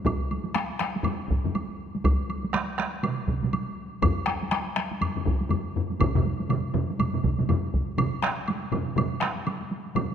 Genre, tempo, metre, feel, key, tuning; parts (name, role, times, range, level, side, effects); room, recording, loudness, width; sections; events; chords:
japanese traditional, taiko drum ensemble; 121 BPM; 4/4; swing 60% on 16ths
taiko ensemble; percussion; 0.1-10.1 s; -31 LUFS; right 1 dB
taiko ensemble; percussion; 0.1-7.9 s; -28 LUFS; equal
woodblock; percussion; 0.1-10.1 s; -35 LUFS; right 2 dB
taiko ensemble; percussion; 0.5-10.1 s; -29 LUFS; left 4 dB
taiko ensemble; percussion; 2.5-10.1 s; -30 LUFS; right 6 dB
moderate concert hall reverb, RT60 2.3 s; -25 LUFS; side -8 dB against mid
0.0-8.0 A section; 8.0-10.1 B section